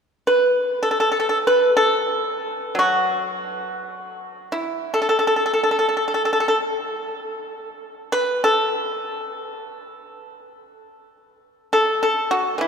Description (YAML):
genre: chinese traditional, Chinese solo plucked strings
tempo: free time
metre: none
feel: none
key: unclear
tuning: A4 = 440 Hz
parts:
  - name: pipa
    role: solo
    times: 0.3-12.7 s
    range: E3 to B4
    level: -19 LUFS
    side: equal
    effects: none
room: wet cathedral reverb, RT60 4.9 s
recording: recorded in a church or concert hall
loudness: -18 LUFS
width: side -6 dB against mid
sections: 0.0-10.6 A section; 10.6-12.7 B section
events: none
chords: none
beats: free time